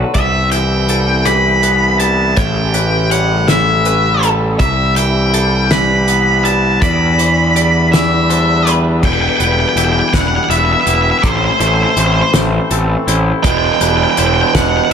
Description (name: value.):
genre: post-rock.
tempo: 54 BPM (dotted quarters).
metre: 6/8.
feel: straight.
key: E minor.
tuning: A4 = 440 Hz.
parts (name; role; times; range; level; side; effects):
hand-pumped harmonium; sustained chords; 0.0-14.9 s; C3 to C5; -25 LUFS; left 1 dB; none.
twangy electric guitar; arpeggios; 0.0-14.9 s; E2 to F#4; -21 LUFS; left 4 dB; plate reverb, analog delay.
twelve-string electric guitar; arpeggios; 0.0-14.9 s; A4 to E5; -26 LUFS; right 5 dB; plate reverb, analog delay.
fuzz picked electric bass; bass; 0.0-14.9 s; E1 to E2; -15 LUFS; equal; overdrive.
octave-fuzz lead guitar; melody; 0.1-14.9 s; C5 to B5; -15 LUFS; equal; distortion, plate reverb, analog delay.
loose indie drum kit; drums; 0.1-14.7 s; crash cymbal, hi-hat, kick drum, rim click, snare drum; -18 LUFS; left 1 dB; none.
raw garage guitar; riff; 13.4-14.9 s; E2 to E3; -15 LUFS; right 13 dB; overdrive.
room: moderate large studio reverb, RT60 0.8 s.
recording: none.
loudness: -10 LUFS.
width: side -7 dB against mid.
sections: 0.2-9.0 A section; 9.0-14.9 B section.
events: none.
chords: 0.2 Cmaj7; 2.4 A7; 4.6 Cmaj7; 6.8 Em7; 9.0 Em; 11.2 Am; 13.4 Em.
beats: | 0.15 1.26 | 2.38 3.48 | 4.60 5.71 | 6.81 7.92 | 9.03 10.13 | 11.24 12.34 | 13.44 14.54.